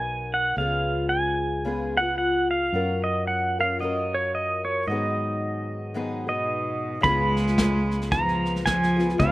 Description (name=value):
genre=acoustic folk duo or small band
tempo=111 BPM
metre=4/4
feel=swing 60% on 8ths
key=unclear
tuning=A4 = 440 Hz
part: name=pedal steel guitar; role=melody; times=0.0-9.3 s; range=Db5 to Cb6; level=-25 LUFS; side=right 1 dB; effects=slapback echo
part: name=fingerpicked twelve-string acoustic guitar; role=accompaniment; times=0.0-9.3 s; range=Ab2 to A#4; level=-28 LUFS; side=left 2 dB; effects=slapback echo
part: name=fingered electric bass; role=bass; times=0.0-9.3 s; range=B1 to Ab2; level=-31 LUFS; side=equal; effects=none
part: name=clear cello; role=second line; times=6.3-9.3 s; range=Cb3 to Ab3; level=-26 LUFS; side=right 1 dB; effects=none
part: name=soft brush drum kit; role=drums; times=7.0-9.3 s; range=kick drum, snare drum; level=-29 LUFS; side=equal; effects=none
room=little or no reverb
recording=none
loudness=-22 LUFS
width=side -17 dB against mid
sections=0.0-7.0 A section; 7.0-9.3 B section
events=none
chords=0.0 Bmaj7; 0.6 Db7; 2.7 Gbmaj7; 4.9 Abm7; 7.0 Db7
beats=0.03 | 0.57 1.11 1.65 2.19 | 2.73 3.27 3.81 4.35 | 4.89 5.43 5.97 6.51 | 7.05 7.58 8.12 8.66 | 9.20